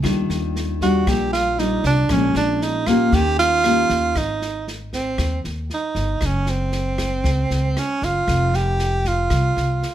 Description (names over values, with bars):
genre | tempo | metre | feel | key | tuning
bossa nova | 116 BPM | 4/4 | straight | Eb major, Ab major from 4.2 s | A4 = 439 Hz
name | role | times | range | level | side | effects
nylon-string guitar | accompaniment | 0.0-4.1 s | Bb2 to G4 | -21 LUFS | left 2 dB | none
upright bass | bass | 0.0-9.8 s | F1 to Eb2 | -23 LUFS | equal | none
open jazz drum kit | drums | 0.0-9.9 s | kick drum, rim click, snare drum | -28 LUFS | equal | none
breathy tenor saxophone | melody | 0.8-9.9 s | C4 to G4 | -21 LUFS | right 3 dB | none
room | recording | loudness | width
light reverb | none | -18 LUFS | side -11 dB against mid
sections
0.0-4.2 A section; 4.2-9.9 B section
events
tenor saxophone solo 0.0-4.2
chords
0.0 Ebmaj9; 2.1 Bbm7; 3.1 Eb7; 4.2 Abmaj7; 6.2 Gb5; 8.3 Fsus2